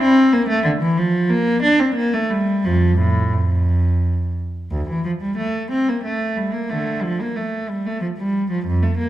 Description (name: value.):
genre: classical, baroque-style suite movement for unaccompanied cello.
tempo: 91 BPM.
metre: 3/4.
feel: rubato.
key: F major.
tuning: A4 = 443 Hz.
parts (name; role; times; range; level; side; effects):
rich cello; solo; 0.0-9.1 s; D2 to D4; -17 LUFS; equal; none.
room: wet recital hall reverb, RT60 1.3 s.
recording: dark, warm production.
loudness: -17 LUFS.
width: side -13 dB against mid.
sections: 0.0-4.7 A section; 4.7-9.1 A section.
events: none.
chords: none.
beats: | 0.64 1.29 1.95 | 2.63 3.32 4.00 | 4.70 5.38 6.03 | 6.69 7.35 8.00 | 8.64.